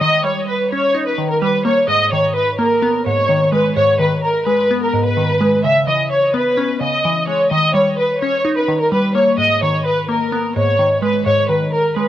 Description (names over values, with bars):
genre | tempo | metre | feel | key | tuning
hip hop | 128 BPM | 4/4 | half-time | G# harmonic minor | A4 = 441 Hz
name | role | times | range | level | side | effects
warm studio violin section | melody | 0.0-12.1 s | A#4 to E5 | -15 LUFS | equal | low-pass filter, tape echo
glassy wavetable pluck | accompaniment | 0.0-12.1 s | G#2 to D#4 | -19 LUFS | equal | chorus, low-pass filter
room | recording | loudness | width
moderate booth ambience, RT60 0.2 s | home recording on cassette | -14 LUFS | side -12 dB against mid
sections
0.0-5.6 A section; 5.6-12.1 B section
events
none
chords
0.0 D#7; 1.9 G#madd9; 5.6 C#m7; 7.5 D#7; 9.4 G#madd9